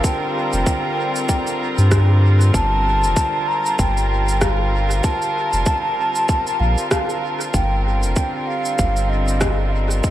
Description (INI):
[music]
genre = ambient dub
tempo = 96 BPM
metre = 4/4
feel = swing 58% on 16ths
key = unclear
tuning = A4 = 440 Hz
[part]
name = mellow hollow concert flute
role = melody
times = 0.0-10.1 s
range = Eb5 to Bb5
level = -22 LUFS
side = equal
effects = dub echo
[part]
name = rich chamber string section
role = sustained chords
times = 0.0-10.1 s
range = D3 to Bb4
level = -24 LUFS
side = equal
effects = none
[part]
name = electronic cabasa and rim click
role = drums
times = 0.0-10.1 s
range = none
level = -27 LUFS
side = equal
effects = overdrive, dub echo
[part]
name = electronic kick drum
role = drums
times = 0.0-10.1 s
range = none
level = -21 LUFS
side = equal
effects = overdrive
[part]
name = warm sub bass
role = bass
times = 0.5-10.0 s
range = F1 to G2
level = -17 LUFS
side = equal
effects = none
[sound]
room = light reverb, digital ambience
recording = vinyl crackle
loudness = -16 LUFS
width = side -13 dB against mid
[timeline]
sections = 0.0-10.1 A section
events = none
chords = 0.0 Bbmaj13/F